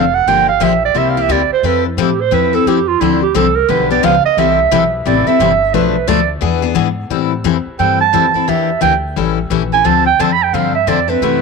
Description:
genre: acoustic string swing (jazz manouche).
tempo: 176 BPM.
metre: 4/4.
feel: swing 62% on 8ths.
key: unclear.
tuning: A4 = 440 Hz.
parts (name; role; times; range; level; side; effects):
dark clarinet; melody; 0.0-11.4 s; E4 to B5; -13 LUFS; right 11 dB; none.
picked steel-string acoustic guitar; accompaniment; 0.0-11.4 s; B2 to A4; -15 LUFS; left 14 dB; none.
upright bass; bass; 0.0-11.4 s; F1 to A2; -21 LUFS; equal; none.
room: moderate spring reverb, RT60 2.2 s.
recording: 1960s-style stereo with parts hard left and right.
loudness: -11 LUFS.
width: side -4 dB against mid.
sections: 0.0-7.1 A section; 7.1-11.4 A section.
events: clarinet solo 0.0-11.4.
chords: 0.3 Gm7; 1.0 C7; 1.6 Fmaj7; 3.0 Dm7; 3.7 G7; 4.4 C6; 5.7 Bm7b5; 6.4 E7; 7.1 Am7; 8.5 Em7b5; 9.2 A7b9; 9.8 Dm7.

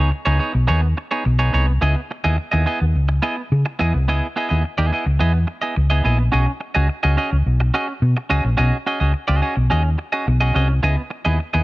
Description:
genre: disco.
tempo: 106 BPM.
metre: 4/4.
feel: straight.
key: B major.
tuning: A4 = 442 Hz.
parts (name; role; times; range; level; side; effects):
semi-hollow electric guitar; accompaniment; 0.0-11.6 s; B3 to D#5; -22 LUFS; right 2 dB; none.
hollow-body short-scale fingered electric bass; bass; 0.0-11.6 s; A#1 to C#3; -17 LUFS; equal; none.
room: digital ambience.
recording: nothing above 11.0 kHz.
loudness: -16 LUFS.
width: side -20 dB against mid.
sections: 0.0-11.6 A section.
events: none.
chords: 0.0 B69; 1.8 C#m9; 6.3 B69; 10.8 C#m9.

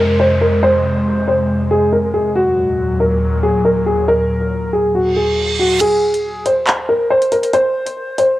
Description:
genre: hip hop, drill.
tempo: 139 BPM.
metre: 4/4.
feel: half-time.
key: unclear.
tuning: A4 = 440 Hz.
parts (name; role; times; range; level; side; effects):
dark grand piano; melody; 0.0-8.4 s; Gb4 to C5; -14 LUFS; equal; low-pass filter, cassette tape, tape echo.
airy breathy pad; sustained chords; 0.0-5.8 s; Eb2 to Ab3; -18 LUFS; equal; chorus.
downlifter and reverse cymbal; sound effects; 0.0-5.8 s; none; -24 LUFS; right 3 dB; none.
drill drum kit; drums; 5.8-8.3 s; crash cymbal, handclaps, hi-hat; -21 LUFS; equal; cassette tape.
room: moderate spring reverb, RT60 1.6 s.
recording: home recording on cassette.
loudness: -13 LUFS.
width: side -15 dB against mid.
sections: 0.0-5.8 A section; 5.8-8.4 B section.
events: reverse cymbal 5.1-5.8; kick muted 5.8-8.4.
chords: 0.0 Fm; 2.4 Ebm; 5.8 N.C..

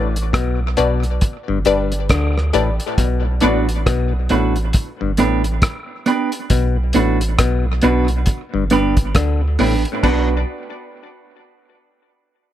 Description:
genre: dub reggae.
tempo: 68 BPM.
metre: 4/4.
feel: swing 60% on 16ths.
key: B minor.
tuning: A4 = 440 Hz.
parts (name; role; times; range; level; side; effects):
clav; riff; 0.0-9.8 s; G2 to D3; -23 LUFS; left 6 dB; tape echo.
filtered dub chord stab; stabs; 0.0-3.6, 10.0-10.4 s; D4 to D5; -21 LUFS; left 4 dB; phaser, tape echo.
soft dub sub bass; bass; 0.0-10.4 s; G1 to D2; -19 LUFS; equal; none.
cloth-damped thuddy drum kit; drums; 0.2-10.3 s; crash cymbal, hi-hat, kick drum, rim click; -18 LUFS; equal; none.
semi-hollow electric guitar; accompaniment; 3.4-10.3 s; B3 to B4; -19 LUFS; right 5 dB; tape echo.
room: light reverb, small room ambience.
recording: none.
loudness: -15 LUFS.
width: side -12 dB against mid.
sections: 0.0-10.0 A section; 10.0-12.5 B section.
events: break 0.0-3.0.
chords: 0.0 Bm; 1.2 G; 3.0 Bm; 4.7 G; 6.5 Bm; 8.3 G; 10.0 Bm.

